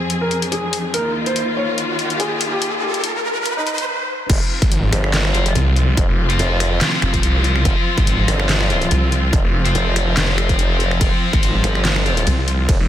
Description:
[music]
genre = heavy wobble dubstep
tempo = 143 BPM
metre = 4/4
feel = swing 54% on 16ths, half-time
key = F minor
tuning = A4 = 439 Hz
[part]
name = warm symphonic string section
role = sustained chords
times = 0.0-12.9 s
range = Eb2 to Ab4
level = -23 LUFS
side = left 1 dB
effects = sidechain pumping
[part]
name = riser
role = sound effects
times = 0.1-3.9 s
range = none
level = -25 LUFS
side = equal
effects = none
[part]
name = dubstep drum kit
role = drums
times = 0.1-12.8 s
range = crash cymbal, finger snaps, handclaps, hi-hat, ride cymbal, snare drum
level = -23 LUFS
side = left 1 dB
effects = none
[part]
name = felt-muted upright piano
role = melody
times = 0.2-3.7 s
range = Eb4 to Db5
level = -24 LUFS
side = equal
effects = tape echo
[part]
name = formant-sweep wobble bass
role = bass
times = 4.3-12.8 s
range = F1 to G1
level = -19 LUFS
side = equal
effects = chorus, overdrive
[part]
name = electronic kick drum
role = drums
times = 4.3-12.8 s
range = none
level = -18 LUFS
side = equal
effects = overdrive
[part]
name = snarling distorted saw bass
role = bass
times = 4.6-12.9 s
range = F1 to C2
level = -17 LUFS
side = equal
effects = distortion, overdrive
[part]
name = heavy high-gain guitar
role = stabs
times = 5.3-12.2 s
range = F3 to F4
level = -23 LUFS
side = left 3 dB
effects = distortion, tape echo
[sound]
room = light reverb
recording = dense, heavily limited modern master, high-pass filter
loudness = -15 LUFS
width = side -11 dB against mid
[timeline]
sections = 0.0-4.3 A section; 4.3-12.9 B section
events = build-up 0.0-4.3; riser 0.1-3.9; stop 3.9-4.3; drop 4.3-12.9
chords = 0.0 Fm; 0.9 Ebsus2; 4.3 F5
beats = 0.10 0.52 | 0.94 1.36 1.78 2.20 | 2.62 3.04 3.46 3.88 | 4.29 4.71 5.13 5.55 | 5.97 6.39 6.81 7.23 | 7.65 8.07 8.49 8.91 | 9.33 9.75 10.17 10.59 | 11.01 11.43 11.85 12.27 | 12.69

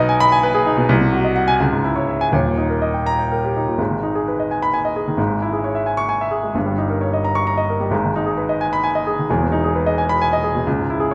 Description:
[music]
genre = classical, virtuoso piano study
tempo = 87 BPM (dotted quarters)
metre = 6/8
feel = rubato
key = G# minor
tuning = A4 = 440 Hz
[part]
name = warm baby grand piano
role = solo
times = 0.0-11.1 s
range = D#1 to C#6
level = -19 LUFS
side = equal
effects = none
[sound]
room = moderate recital hall reverb, RT60 1.4 s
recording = none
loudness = -19 LUFS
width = mono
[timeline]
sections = 0.0-3.8 A section; 3.8-11.1 B section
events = none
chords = 0.0 G#m/B; 0.9 G#7/B#; 1.6 C#m; 2.3 D#; 3.8 G#m; 5.2 C#m/G#; 6.6 D#7/G; 7.9 G#m; 9.3 Emaj7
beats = 0.21 | 0.90 1.60 | 2.33 3.06 | 3.79 4.50 | 5.18 5.87 | 6.55 7.24 | 7.92 8.60 | 9.28 9.97 | 10.66

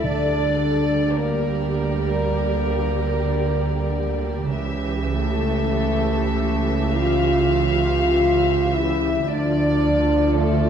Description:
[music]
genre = classical, slow romantic movement for symphony orchestra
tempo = 45-57 BPM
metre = 4/4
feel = rubato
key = unclear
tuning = A4 = 440 Hz
[part]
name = warm studio violin section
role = melody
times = 0.0-10.7 s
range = D5 to E5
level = -30 LUFS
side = left 1 dB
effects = none
[part]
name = warm studio violin section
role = second line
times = 0.0-10.7 s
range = A4 to F5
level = -28 LUFS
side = left 2 dB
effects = none
[part]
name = dark symphonic viola section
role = accompaniment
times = 0.0-10.7 s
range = E3 to A4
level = -29 LUFS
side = right 2 dB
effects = none
[part]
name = warm French horn section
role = sustained chords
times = 0.0-10.7 s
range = A3 to F4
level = -22 LUFS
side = left 3 dB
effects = none
[part]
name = warm studio cello section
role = bass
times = 0.0-10.7 s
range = C#3 to D3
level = -27 LUFS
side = right 5 dB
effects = none
[part]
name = warm studio double bass section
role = bass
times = 0.0-10.7 s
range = C#2 to D2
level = -25 LUFS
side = right 4 dB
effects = none
[part]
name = timpani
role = percussion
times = 0.0-1.7 s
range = D3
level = -32 LUFS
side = equal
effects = none
[sound]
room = wet concert hall reverb, RT60 1.7 s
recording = dark, warm production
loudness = -18 LUFS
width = side -8 dB against mid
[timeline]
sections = 0.0-10.7 A section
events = none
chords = 0.0 Gm/D; 4.6 A7/C#; 9.3 Dm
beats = | 0.04 1.15 2.28 3.41 | 4.55 5.69 6.97 8.16 | 9.29 10.36

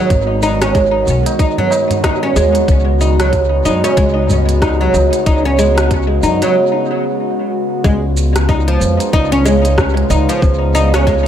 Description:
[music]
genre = organic downtempo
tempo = 93 BPM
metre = 4/4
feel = swing 59% on 16ths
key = unclear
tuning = A4 = 437 Hz
[part]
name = warbly tape-like pad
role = sustained chords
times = 0.0-11.3 s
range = C#3 to F#4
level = -19 LUFS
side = left 1 dB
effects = chorus, built-in reverb, sidechain pumping
[part]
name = oud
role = arpeggios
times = 0.0-11.3 s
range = E#3 to D#4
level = -15 LUFS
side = right 2 dB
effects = tape echo
[part]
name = upright bass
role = bass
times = 0.1-11.3 s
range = G#1 to F#2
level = -15 LUFS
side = left 1 dB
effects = sidechain pumping
[part]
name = electronic kick drum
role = drums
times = 0.1-11.2 s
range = none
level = -15 LUFS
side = left 1 dB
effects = none
[part]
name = organic electronic drum kit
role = drums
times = 0.1-11.2 s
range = hi-hat, rim click, shaker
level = -22 LUFS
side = equal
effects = none
[part]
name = tabla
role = percussion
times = 0.6-6.5 s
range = none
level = -25 LUFS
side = equal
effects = analog delay
[sound]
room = light reverb, digital ambience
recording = echo-heavy mix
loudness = -11 LUFS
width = side -10 dB against mid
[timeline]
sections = 0.0-7.8 A section; 7.8-11.3 B section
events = break 6.6-7.8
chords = 0.0 G#m7; 2.7 C#7sus4; 7.8 C#7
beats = | 0.10 0.75 1.39 2.04 | 2.69 3.33 3.98 4.62 | 5.26 5.91 6.56 7.20 | 7.85 8.49 9.14 9.78 | 10.43 11.07

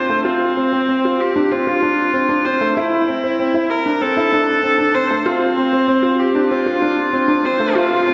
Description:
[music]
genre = electronica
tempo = 96 BPM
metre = 4/4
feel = straight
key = F major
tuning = A4 = 442 Hz
[part]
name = warm viola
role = melody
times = 0.0-8.1 s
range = C4 to C5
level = -19 LUFS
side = equal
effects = low-pass filter
[part]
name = felt-muted upright piano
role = riff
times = 0.0-8.1 s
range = A3 to F4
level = -20 LUFS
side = equal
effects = none
[sound]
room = wet scoring stage reverb, RT60 1.7 s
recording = nothing above 7.8 kHz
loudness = -17 LUFS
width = mono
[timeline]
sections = 0.0-8.1 A section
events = build-up 0.0-8.1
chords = 0.0 F6/A; 2.8 Am; 5.3 F5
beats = | 0.26 0.89 1.51 2.14 | 2.76 3.39 4.01 4.64 | 5.26 5.89 6.51 7.14 | 7.76

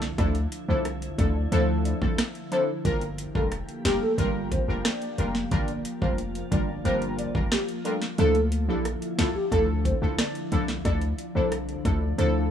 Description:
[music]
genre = dancehall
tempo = 90 BPM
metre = 4/4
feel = straight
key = D minor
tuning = A4 = 441 Hz
[part]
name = synth brass stab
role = accompaniment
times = 0.0-12.5 s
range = F3 to Bb4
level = -30 LUFS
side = right 1 dB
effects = chorus
[part]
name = glassy FM pad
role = sustained chords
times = 0.0-12.5 s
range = D3 to G4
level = -34 LUFS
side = left 1 dB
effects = ensemble chorus, built-in reverb, sidechain pumping
[part]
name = hard-hitting 808-style bass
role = bass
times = 0.0-12.5 s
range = E1 to D2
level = -27 LUFS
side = equal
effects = none
[part]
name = island pop drum kit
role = drums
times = 0.0-12.3 s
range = hi-hat, kick drum, rim click, snare drum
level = -28 LUFS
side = equal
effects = overdrive
[part]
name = hollow clarinet-like synth lead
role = melody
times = 0.2-12.3 s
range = F4 to D5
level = -30 LUFS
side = left 1 dB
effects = chorus, tape echo
[sound]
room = little or no reverb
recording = none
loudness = -23 LUFS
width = side -9 dB against mid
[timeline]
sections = 0.0-12.5 A section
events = kick muted 8.2-8.8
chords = 0.0 Dmadd9; 2.9 Gm7; 8.2 Dmadd9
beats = | 0.18 0.85 1.52 2.18 | 2.85 3.52 4.18 4.85 | 5.52 6.18 6.85 7.52 | 8.18 8.85 9.52 10.18 | 10.85 11.52 12.18

